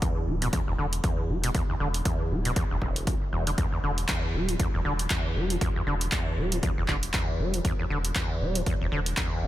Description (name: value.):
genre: acid house.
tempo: 118 BPM.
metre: 4/4.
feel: swing 57% on 16ths.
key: E minor.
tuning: A4 = 440 Hz.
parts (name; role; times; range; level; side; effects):
deep acid bass; riff; 0.0-9.5 s; E1 to G3; -29 LUFS; equal; overdrive, wide subtle chorus, tape echo.
electronic kick drum; drums; 0.0-9.3 s; none; -29 LUFS; equal; none.
punchy analog drum machine; drums; 0.0-9.3 s; handclaps, hi-hat; -32 LUFS; equal; none.
round analog bass; bass; 0.3-9.5 s; D1 to E1; -30 LUFS; equal; sidechain pumping.
room: light reverb.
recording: none.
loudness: -25 LUFS.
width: side -14 dB against mid.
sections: 0.0-9.5 A section.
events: none.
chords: none.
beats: 0.02 0.53 1.04 | 1.55 2.05 2.56 3.07 | 3.58 4.09 4.60 5.11 | 5.61 6.12 6.63 7.14 | 7.65 8.16 8.66 9.17.